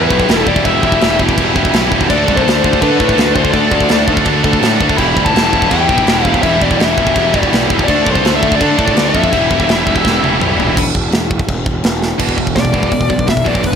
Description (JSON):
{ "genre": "heavy metal", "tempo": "166 BPM", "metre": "4/4", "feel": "straight", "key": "E minor", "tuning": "A4 = 440 Hz", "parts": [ { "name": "high-gain lead guitar", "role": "melody", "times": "0.0-10.3, 12.6-13.8 s", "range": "B4 to B5", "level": "-17 LUFS", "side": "left 3 dB", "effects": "distortion, tape echo" }, { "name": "heavy high-gain guitar", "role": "riff", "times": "0.0-13.8 s", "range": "E2 to A3", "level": "-20 LUFS", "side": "left 13 dB", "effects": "distortion" }, { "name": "heavy high-gain guitar", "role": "riff", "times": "0.0-10.7 s", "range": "E2 to D4", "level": "-19 LUFS", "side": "left 1 dB", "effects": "distortion" }, { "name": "tight distorted guitar", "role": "riff", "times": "0.0-13.8 s", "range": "E2 to A4", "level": "-18 LUFS", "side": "right 14 dB", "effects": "distortion" }, { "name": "fuzz picked electric bass", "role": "bass", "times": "0.0-13.8 s", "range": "E1 to D3", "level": "-18 LUFS", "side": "equal", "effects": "overdrive" }, { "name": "tight metal drum kit", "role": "drums", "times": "0.1-13.8 s", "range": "crash cymbal, hi-hat, kick drum, snare drum, toms", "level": "-16 LUFS", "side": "equal", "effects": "none" } ], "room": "little or no reverb", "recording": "none", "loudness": "-10 LUFS", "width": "side -7 dB against mid", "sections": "0.0-10.8 A section; 10.8-12.2 B section; 12.2-13.8 C section", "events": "drum fill 10.0-10.8, 12.0; lead electric guitar solo 12.2-13.8", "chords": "0.0 Em; 2.1 D5; 5.0 Em; 7.9 D5; 9.3 Em; 10.8 N.C.; 12.2 E5" }